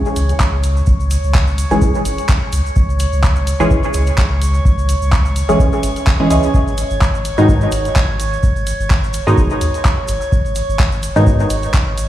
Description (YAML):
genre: dub techno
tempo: 127 BPM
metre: 4/4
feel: swing 55% on 16ths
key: C# minor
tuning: A4 = 439 Hz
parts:
  - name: filtered dub chord stab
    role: stabs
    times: 0.0-11.5 s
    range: B2 to G#4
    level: -18 LUFS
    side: equal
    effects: chorus, phaser, sidechain pumping, dub echo
  - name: warm sub bass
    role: bass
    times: 0.0-12.1 s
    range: F#1 to G#2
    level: -17 LUFS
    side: equal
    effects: tube saturation, sidechain pumping
  - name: drifting glass-harmonics texture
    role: texture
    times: 0.0-12.1 s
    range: C#5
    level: -24 LUFS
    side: right 2 dB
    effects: chorus, built-in reverb, sidechain pumping
  - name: tube shaker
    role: percussion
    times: 0.1-12.1 s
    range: none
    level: -33 LUFS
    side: right 4 dB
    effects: none
  - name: deep house drum kit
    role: drums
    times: 0.2-12.1 s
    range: handclaps, hi-hat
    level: -24 LUFS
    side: equal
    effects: dub echo
  - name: electronic kick drum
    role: drums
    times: 0.4-11.8 s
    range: none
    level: -15 LUFS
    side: equal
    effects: none
room: light reverb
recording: played on a big sound system in a bare room, large studio reverb, vinyl crackle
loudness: -13 LUFS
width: side -13 dB against mid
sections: 0.0-12.1 A section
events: none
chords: 0.0 C#m; 6.5 G#m